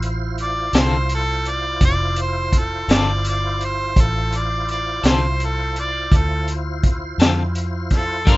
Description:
slow blues; 56 BPM (dotted quarters); 12/8; straight; D minor; A4 = 442 Hz
tonewheel organ; sustained chords; 0.0-8.4 s; E4 to C5; -29 LUFS; equal; slow rotary speaker, overdrive, chorus vibrato
vintage muted fingered electric bass; bass; 0.0-8.4 s; F1 to G2; -22 LUFS; equal
crunchy breakbeat drum kit; drums; 0.0-8.4 s; hi-hat, kick drum, snare drum; -17 LUFS; equal
bright harmonica; melody; 0.4-8.4 s; A4 to D5; -23 LUFS; equal; overdrive
electric guitar at the edge of break-up; accompaniment; 0.7-8.4 s; D3 to Bb4; -21 LUFS; left 4 dB; tremolo
light reverb; rough home demo mix, nothing above 7.8 kHz; -17 LUFS; side -19 dB against mid
0.0-8.4 A section
0.0 Dm7

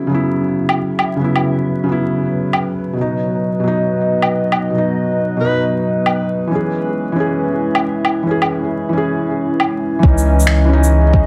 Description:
future garage; 136 BPM; 4/4; swing 66% on 16ths; A4 = 440 Hz
felt-muted upright piano; accompaniment; 0.0-11.3 s; B2 to G#4; -20 LUFS; equal; sidechain pumping, digital delay
warbly tape-like pad; sustained chords; 0.0-11.3 s; C#3 to E5; -22 LUFS; equal; chorus, built-in reverb, vintage 12-bit sampler grit, sidechain pumping
electronic woodblock, shaker and finger snaps; drums; 0.7-10.9 s; -20 LUFS; equal
warm alto saxophone; melody; 5.4-5.6 s; B4; -26 LUFS; equal; tape echo
soft dub sub bass; bass; 10.0-11.3 s; C#2; -15 LUFS; equal; sidechain pumping
electronic kick drum; drums; 10.0-11.3 s; -14 LUFS; equal
moderate digital room reverb, RT60 0.9 s, digital ambience; vinyl crackle; -16 LUFS; mono
0.0-10.0 A section; 10.0-11.3 B section
0.0 F#7sus4/C#; 3.0 B; 6.5 E6; 10.0 C#madd9

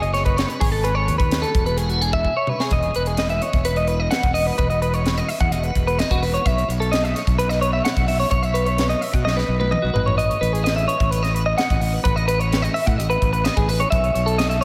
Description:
math rock and midwest emo; 128 BPM; 4/4; straight; E major; A4 = 439 Hz
clean electric guitar; arpeggios; 0.0-14.6 s; F#4 to F#5; -24 LUFS; equal; analog chorus, diffuse ambient delay
fuzz fingered electric bass; bass; 0.0-14.6 s; E1 to B2; -25 LUFS; equal; overdrive
crisp fusion drum kit; drums; 0.0-14.6 s; hi-hat, kick drum, snare drum, toms; -26 LUFS; equal
moderate lush hall reverb, RT60 1.6 s; dreamy mix soaked in reverb; -20 LUFS; mono
0.0-2.7 A section; 2.7-14.6 B section
drum fill 2.2-2.7, 9.3-10.2
0.0 F#5; 0.6 G#m; 1.5 E; 2.7 Emaj7sus2; 6.5 Bsus4; 10.0 Aadd9(#11); 13.9 B9sus4

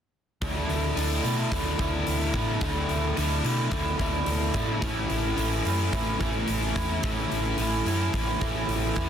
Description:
rock, shoegaze and dream pop; 109 BPM; 4/4; straight; A4 = 442 Hz
biting overdriven guitar; riff; 0.4-9.1 s; A2 to E4; -27 LUFS; equal; analog chorus
fingered electric bass; bass; 0.4-9.1 s; A1 to B2; -30 LUFS; equal
huge arena drum kit; drums; 0.4-9.1 s; hi-hat, kick drum; -31 LUFS; equal
small room ambience; dense, heavily limited modern master; -24 LUFS; side -8 dB against mid
0.4-9.1 A section
0.4 Dsus2; 4.8 A

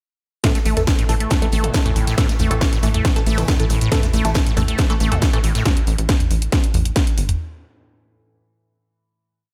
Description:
driving peak-time techno; 138 BPM; 4/4; straight; A4 = 441 Hz
acid bass, saw; riff; 0.4-5.6 s; A2 to A3; -27 LUFS; equal; analog chorus, sidechain pumping, delay
filtered dub chord stab; stabs; 0.4-5.4 s; E3 to A4; -29 LUFS; equal; phaser, sidechain pumping, delay
overtone-sweeping drone; drone; 1.2-5.7 s; A2 to E3; -34 LUFS; equal
electronic kick drum; drums; 0.4-7.0 s; -21 LUFS; equal; distortion, overdrive
swinging big-band drum kit; drums; 0.4-5.7 s; hi-hat, snare drum; -39 LUFS; equal
techno drum kit; drums; 0.4-7.4 s; hi-hat, snare drum, toms; -25 LUFS; equal; overdrive, sidechain pumping on hats, sidechain pumping on toms
tight sequencer bass; bass; 0.7-7.4 s; G1 to A1; -23 LUFS; equal; sidechain pumping
light reverb; -18 LUFS; mono
0.4-7.4 drop
drop 0.4-7.4
0.4 A5

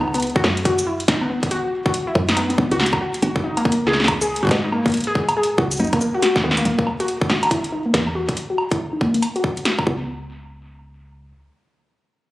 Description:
IDM; 140 BPM; 4/4; swing 62% on 16ths; A4 = 441 Hz
warbly dusty pluck; arpeggios; 0.0-10.3 s; A#3 to G#4; -21 LUFS; left 1 dB; chorus, phaser, cassette tape, ping-pong delay
woody FM bass; bass; 0.0-11.3 s; E1 to G#2; -25 LUFS; equal
electro analog drum machine; drums; 0.0-9.9 s; hi-hat, shaker, snare drum, woodblock; -22 LUFS; equal; tape echo
electronic kick drum; drums; 0.4-10.0 s; -21 LUFS; equal
moderate digital room reverb, RT60 1.1 s, digital ambience; recorded on a phone in the room, club reverb; -17 LUFS; side -17 dB against mid
0.0-6.7 A section; 6.7-10.1 B section; 10.1-12.3 C section
drum fill 6.2-6.7; filter sweep on synth pluck 6.7-10.1
0.0 C#7sus4; 3.2 G#7sus2; 6.7 Eadd9(#11); 9.9 Bsus2/C#; 10.1 N.C.

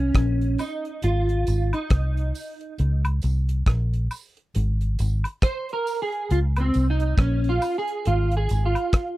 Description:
roots reggae; 68 BPM; 4/4; swing 60% on 16ths; A4 = 440 Hz
clean electric guitar; accompaniment; 0.0-9.2 s; Cb4 to C5; -26 LUFS; right 2 dB; ensemble chorus
vintage muted fingered electric bass; bass; 0.0-8.7 s; Ab1 to Db2; -22 LUFS; equal
damped 70s drum kit; drums; 0.1-9.2 s; hi-hat, kick drum, rim click; -20 LUFS; equal
tambourine and woodblock; percussion; 0.6-8.9 s; -34 LUFS; equal
little or no reverb; dry, close 1970s-style studio recording; -21 LUFS; side -17 dB against mid
0.0-9.2 A section
clean electric guitar solo 0.0-9.2
0.0 Bbm; 1.0 Ab; 2.8 Bbmadd9; 4.5 Abadd9; 6.3 Bbm11; 8.1 Fm/Ab

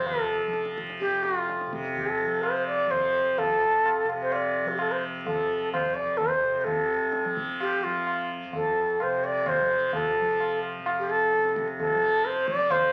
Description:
indian classical, Hindustani; 128 BPM; 7/4; straight; F raga bhupali; A4 = 440 Hz
bright reedy bansuri; melody; 0.0-12.9 s; F4 to D5; -27 LUFS; equal
tanpura; drone; 0.0-12.9 s; F2 to F3; -35 LUFS; equal
tabla; percussion; 0.1-12.9 s; -37 LUFS; equal
moderate large studio reverb, RT60 0.8 s; very old 78 rpm record, vinyl crackle; -26 LUFS; mono
0.0-6.7 A section; 6.7-12.9 B section
speeding up 0.0-12.9

